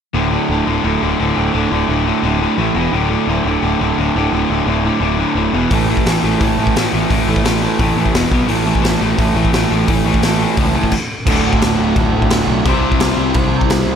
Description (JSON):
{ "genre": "punk rock", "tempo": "173 BPM", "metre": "4/4", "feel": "straight", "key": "D major", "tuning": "A4 = 440 Hz", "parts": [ { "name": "crunchy overdriven guitar", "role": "riff", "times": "0.1-14.0 s", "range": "D2 to C4", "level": "-18 LUFS", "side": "left 11 dB", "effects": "none" }, { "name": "raw garage guitar", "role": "riff", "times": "0.1-14.0 s", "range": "D2 to C5", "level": "-18 LUFS", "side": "right 11 dB", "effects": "overdrive" }, { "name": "growling picked electric bass", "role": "bass", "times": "0.1-14.0 s", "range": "D1 to C#2", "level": "-20 LUFS", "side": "equal", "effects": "overdrive" }, { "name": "raw garage drum kit", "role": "drums", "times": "5.7-13.8 s", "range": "crash cymbal, hi-hat, kick drum, snare drum", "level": "-17 LUFS", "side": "equal", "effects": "none" }, { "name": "fuzz guitar", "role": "riff", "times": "11.3-14.0 s", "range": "D2 to C5", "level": "-21 LUFS", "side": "equal", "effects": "distortion" } ], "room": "light reverb", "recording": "none", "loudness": "-13 LUFS", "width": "side -8 dB against mid", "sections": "0.1-11.3 A section; 11.3-14.0 B section", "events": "stop 10.9-11.3", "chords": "0.1 D5; 2.6 A5; 2.8 E5; 2.9 D5; 5.5 E5; 5.7 A5; 8.1 E5; 8.3 B5; 8.5 A5; 11.1 N.C.; 11.3 D; 12.7 C", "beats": "| 0.15 0.50 0.84 1.19 | 1.54 1.89 2.23 2.58 | 2.93 3.28 3.63 3.97 | 4.32 4.67 5.02 5.36 | 5.71 6.06 6.41 6.75 | 7.10 7.45 7.80 8.14 | 8.49 8.84 9.19 9.54 | 9.88 10.23 10.58 10.92 | 11.27 11.62 11.97 12.31 | 12.66 13.01 13.35 13.70" }